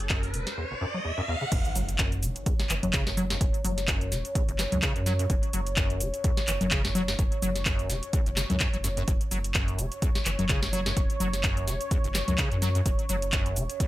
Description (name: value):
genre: acid house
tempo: 127 BPM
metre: 4/4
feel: swing 56% on 16ths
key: unclear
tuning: A4 = 440 Hz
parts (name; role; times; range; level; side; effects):
- dark analog pad; sustained chords; 0.1-13.9 s; C#5; -36 LUFS; right 1 dB; chorus, sidechain pumping
- saturated sub bass; bass; 0.0-13.7 s; E1 to F#2; -31 LUFS; equal; sidechain pumping
- booming analog drum machine; drums; 0.0-13.9 s; congas, crash cymbal, handclaps, hi-hat, shaker, snare drum; -29 LUFS; left 1 dB; none
- riser and impact; sound effects; 0.0-3.4 s; none; -34 LUFS; equal; none
- acid bass, square; riff; 0.1-13.9 s; F#1 to F#3; -33 LUFS; equal; tube saturation, ensemble chorus, analog delay
- electronic kick drum; drums; 0.1-13.9 s; none; -28 LUFS; equal; none
room: little or no reverb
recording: none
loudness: -25 LUFS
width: side -16 dB against mid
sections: 0.0-1.5 A section; 1.5-13.9 B section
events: riser 0.0-1.5; drop 1.5-13.9; impact 1.5-3.4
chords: 0.0 F#5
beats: 0.10 0.57 1.05 | 1.52 1.99 2.46 2.94 | 3.41 3.88 4.35 4.83 | 5.30 5.77 6.24 6.71 | 7.19 7.66 8.13 8.61 | 9.08 9.55 10.02 10.49 | 10.97 11.44 11.91 12.38 | 12.86 13.33 13.80